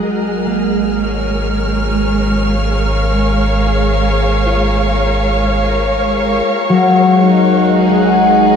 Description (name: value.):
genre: ambient.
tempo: 75 BPM.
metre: 4/4.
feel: straight.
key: unclear.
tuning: A4 = 439 Hz.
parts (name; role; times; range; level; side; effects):
clear studio string section; sustained chords; 0.0-8.6 s; G#3 to E#5; -16 LUFS; right 1 dB; low-pass filter.
concert harp; arpeggios; 0.0-8.6 s; F#3 to F#5; -15 LUFS; left 3 dB; tape echo.
warm sub bass; bass; 0.0-8.6 s; G#1; -18 LUFS; equal; none.
dark studio violin section; texture; 0.1-6.5 s; E#6; -25 LUFS; equal; none.
overtone-sweeping drone; drone; 6.7-8.6 s; G#3 to G#4; -17 LUFS; right 5 dB; chorus, built-in reverb.
room: wet shimmer reverb, RT60 8.5 s.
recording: dark, warm production.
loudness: -11 LUFS.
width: side -7 dB against mid.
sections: 0.0-6.5 A section; 6.5-8.6 B section.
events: none.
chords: 0.1 A#m7/G#; 6.5 G#5.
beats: | 0.06 0.86 1.66 2.46 | 3.26 4.06 4.86 5.66 | 6.46 7.26 8.06.